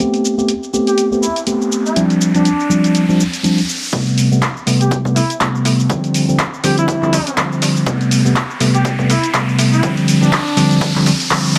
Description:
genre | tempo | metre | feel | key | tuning
filtered disco house | 122 BPM | 4/4 | swing 57% on 16ths | A minor | A4 = 440 Hz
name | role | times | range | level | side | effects
mellow tine electric piano | accompaniment | 0.0-11.6 s | C3 to G4 | -17 LUFS | equal | phaser, vintage 12-bit sampler grit, sidechain pumping, low-pass filter
punchy analog drum machine | drums | 0.0-11.6 s | handclaps, hi-hat, shaker | -23 LUFS | equal | sidechain pumping on perc, sidechain pumping on hats
riser | sound effects | 1.4-11.6 s | none | -28 LUFS | equal | none
maracas | percussion | 0.1-3.9 s | none | barely audible | none | none
clear horn section | melody | 0.9-10.9 s | D4 to G4 | -24 LUFS | equal | sidechain pumping, low-pass filter
slap-like FM bass | bass | 3.9-11.6 s | G1 to A2 | -30 LUFS | equal | none
electronic kick drum | drums | 3.9-11.4 s | none | -26 LUFS | equal | high-pass filter on kick, high-pass filter on room
room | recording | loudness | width
light reverb | none | -15 LUFS | mono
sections
0.0-3.9 A section; 3.9-11.6 B section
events
riser 1.4-3.9, 3.9-11.6; build-up 3.9-11.6; filter sweep 3.9-11.6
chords
0.0 Am9; 2.0 G7sus4; 3.9 Am9; 5.9 G7sus4; 7.9 Am9; 9.8 G7sus4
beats
0.49 0.98 1.47 | 1.96 2.45 2.95 3.44 | 3.93 4.42 4.91 5.41 | 5.90 6.39 6.88 7.37 | 7.86 8.36 8.85 9.34 | 9.83 10.32 10.81 11.31

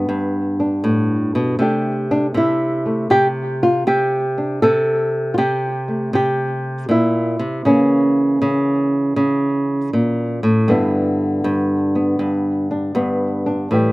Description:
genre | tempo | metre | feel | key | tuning
solo jazz | 79 BPM | 4/4 | swing 67% on 8ths | unclear | A4 = 441 Hz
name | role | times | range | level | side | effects
flamenco guitar | solo | 0.0-13.9 s | G2 to A4 | -16 LUFS | equal | none
room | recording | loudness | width
little or no reverb | recorded outdoors, with no room sound | -16 LUFS | side -20 dB against mid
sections
0.0-13.9 A section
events
none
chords
0.0 Gadd9; 1.6 C69; 7.7 A (rootless); 10.7 G6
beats
0.08 0.84 | 1.59 2.35 3.11 3.87 | 4.63 5.38 6.14 6.90 | 7.66 8.41 9.17 9.93 | 10.68 11.44 12.20 12.95 | 13.71

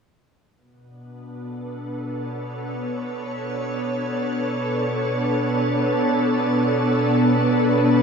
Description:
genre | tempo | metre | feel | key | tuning
ambient | free time | none | none | B minor | A4 = 438 Hz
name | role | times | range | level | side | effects
soft additive organ-like pad | sustained chords | 1.2-8.0 s | B2 to C#5 | -22 LUFS | equal | ensemble chorus, built-in reverb
bowed-like drone | drone | 1.6-8.0 s | B3 to B4 | -25 LUFS | right 1 dB | built-in reverb
room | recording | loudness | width
wet shimmer reverb, RT60 8.3 s | small room reverb | -20 LUFS | side -6 dB against mid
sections
0.5-8.0 A section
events
fade-in on ambient pad 0.5-8.0; fade-in on synth drone 0.5-8.0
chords
0.5 Bm7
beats
free time

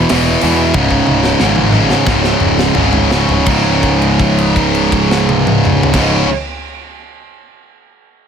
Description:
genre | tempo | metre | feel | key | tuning
heavy metal | 83-95 BPM | 4/4 | straight | C# minor | A4 = 440 Hz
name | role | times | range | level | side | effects
heavy high-gain guitar | riff | 0.0-6.3 s | C#2 to E3 | -15 LUFS | right 9 dB | distortion
high-gain distorted guitar | riff | 0.0-6.3 s | C#2 to E3 | -15 LUFS | left 11 dB | distortion
fuzz picked electric bass | bass | 0.0-6.2 s | C#1 to E2 | -17 LUFS | equal | overdrive
tight metal drum kit | drums | 0.1-6.1 s | crash cymbal, hi-hat, kick drum, snare drum, toms | -17 LUFS | equal | none
room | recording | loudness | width
studio ambience | none | -10 LUFS | side -7 dB against mid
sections
0.0-3.5 A section; 3.5-6.4 B section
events
slowing down 0.0-3.5; drum fill 0.7-3.5; held note 3.5-5.9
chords
0.0 E5; 0.7 C#5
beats
0.11 | 0.75 1.40 2.07 2.76 | 3.48 4.20 4.92 5.65

